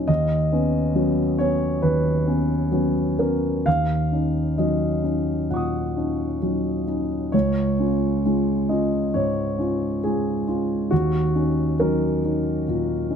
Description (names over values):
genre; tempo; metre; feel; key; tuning
neoclassical minimalist piano; 67 BPM; 4/4; uneven beats, rubato; Eb minor; A4 = 440 Hz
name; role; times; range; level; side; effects
dark concert grand piano; solo; 0.0-13.2 s; Db2 to Eb6; -20 LUFS; equal; none
room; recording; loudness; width
light reverb; close, detailed microphones; -20 LUFS; side -7 dB against mid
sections
0.0-13.2 A section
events
none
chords
0.1 Badd9/D#; 3.7 Ebm7; 7.3 Db; 10.9 Ebm7